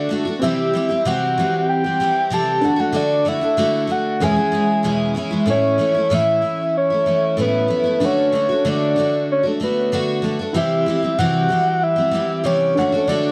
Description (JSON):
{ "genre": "acoustic pop", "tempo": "95 BPM", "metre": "4/4", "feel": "straight", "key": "A major", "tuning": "A4 = 440 Hz", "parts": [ { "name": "soft octave-layered synth lead", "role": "melody", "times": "0.0-13.3 s", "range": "B4 to A5", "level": "-21 LUFS", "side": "equal", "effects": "chorus, digital delay" }, { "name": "dark upright piano", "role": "accompaniment", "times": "0.0-13.3 s", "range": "A3 to F#5", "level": "-29 LUFS", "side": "equal", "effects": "none" }, { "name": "picked twelve-string acoustic guitar", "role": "accompaniment", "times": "0.0-13.3 s", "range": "E2 to G4", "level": "-23 LUFS", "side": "equal", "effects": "none" } ], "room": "wet small room reverb, RT60 0.5 s", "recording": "dark, warm production", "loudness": "-19 LUFS", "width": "mono", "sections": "0.0-5.5 A section; 5.5-13.3 A section", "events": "none", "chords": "0.4 C; 2.6 D; 4.2 E6; 5.5 A; 8.0 D; 10.5 C; 12.8 D" }